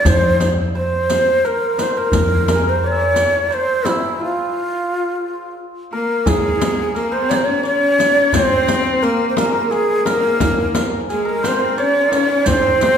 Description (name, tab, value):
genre	Persian modal ensemble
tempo	87 BPM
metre	3/4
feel	straight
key	F avaz esfahan, C dastgah shur from 6.3 s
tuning	A4 = 440 Hz
part	breathy ney	melody	0.0-13.0 s	E4 to Db5+45c	-17 LUFS	right 1 dB	none
part	santur	second line	0.0-13.0 s	E4 to E5	-24 LUFS	right 1 dB	none
part	upright bass	bass	0.1-3.2 s	F2	-20 LUFS	equal	none
part	frame drum	percussion	0.1-13.0 s	none	-24 LUFS	left 4 dB	none
part	riq	percussion	0.1-13.0 s	none	-29 LUFS	right 2 dB	none
part	tombak	percussion	0.1-13.0 s	none	-25 LUFS	equal	none
part	bright cello	second line	5.9-13.0 s	Ab3 to Eb4	-22 LUFS	left 3 dB	none
room	wet recital hall reverb, RT60 1.6 s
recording	recorded in a church or concert hall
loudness	-15 LUFS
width	side -8 dB against mid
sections	0.0-6.3 A section; 6.3-13.0 B section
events	break 4.2-6.3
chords	none